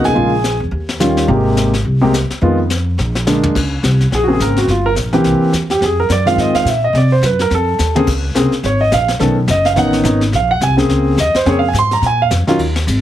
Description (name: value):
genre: jazz piano trio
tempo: 212 BPM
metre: 4/4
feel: swing 59% on 8ths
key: Bb minor from 3.5 s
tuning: A4 = 442 Hz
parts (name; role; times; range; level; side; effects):
- dark concert grand piano; melody; 0.0-12.6 s; C3 to C6; -14 LUFS; right 1 dB; none
- upright bass; bass; 0.0-13.0 s; F#1 to C3; -17 LUFS; equal; none
- vintage brush drum kit; drums; 0.0-13.0 s; brushed snare drum, crash cymbal, hi-hat, kick drum, ride cymbal, snare drum, toms; -22 LUFS; left 3 dB; none
room: light reverb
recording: heavily compressed radio sound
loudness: -12 LUFS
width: side -12 dB against mid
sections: 0.0-3.5 A section; 3.5-12.6 B section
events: drum fill 3.0-3.5, 7.8; grand piano solo 3.5-13.0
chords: 0.2 Bbm7; 0.7 Eb9; 1.3 Abmaj9; 2.4 Fm7b5; 3.0 Bb7; 3.5 Bbm9; 4.7 Gm; 5.2 C7; 5.8 Fm7; 6.9 D7; 7.5 F7; 8.1 Bbm9; 9.2 B9; 10.3 Bbm9; 12.0 Bb5